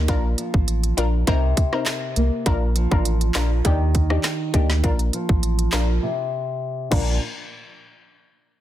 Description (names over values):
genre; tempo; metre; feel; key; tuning
dancehall; 101 BPM; 4/4; straight; Bb major; A4 = 440 Hz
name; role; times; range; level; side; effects
nylon-string guitar; arpeggios; 0.0-7.2 s; Bb2 to D4; -27 LUFS; equal; low-pass filter
warm sub bass; bass; 0.0-7.2 s; A1 to Eb2; -21 LUFS; equal; none
analog pluck; accompaniment; 0.1-7.1 s; C4 to Bb4; -27 LUFS; left 4 dB; chorus, low-pass filter
island pop drum kit; drums; 0.1-7.1 s; crash cymbal, handclaps, hi-hat, kick drum, rim click, snare drum; -22 LUFS; equal; none
room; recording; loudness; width
little or no reverb; dense, heavily limited modern master; -19 LUFS; side -12 dB against mid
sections
0.0-7.2 A section; 7.2-8.6 B section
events
filter sweep 0.0-7.2; break 6.0-7.2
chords
0.1 Bb; 1.3 Cm7; 2.5 Bb; 3.6 Ebmaj7; 4.8 Bb; 6.0 N.C.; 6.9 Bb; 7.2 N.C.